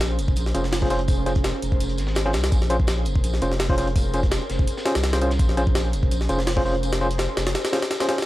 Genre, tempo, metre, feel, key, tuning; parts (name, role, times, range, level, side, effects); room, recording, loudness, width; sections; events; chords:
drum and bass, jungle; 167 BPM; 4/4; swing 54% on 16ths; Bb minor; A4 = 440 Hz
saturated sub bass; bass; 0.0-7.5 s; F1 to C2; -24 LUFS; equal; tube saturation
crunchy breakbeat drum kit; drums; 0.0-8.3 s; hi-hat, snare drum, tambourine; -36 LUFS; equal; high-pass filter on hats, small room reverb, high-pass filter on snare, high-pass filter on perc, high-pass filter on room
jungle sampler-style drum kit; drums; 0.0-8.3 s; hi-hat, kick drum, snare drum; -23 LUFS; equal; small room reverb
overdriven tine electric piano; stabs; 0.5-8.2 s; Db4 to C5; -26 LUFS; equal; fast tremolo, low-pass filter, dub echo
small room ambience; dry, gritty hardware recording, vinyl crackle; -20 LUFS; side -16 dB against mid
0.0-8.3 A section
0.0 Bbm9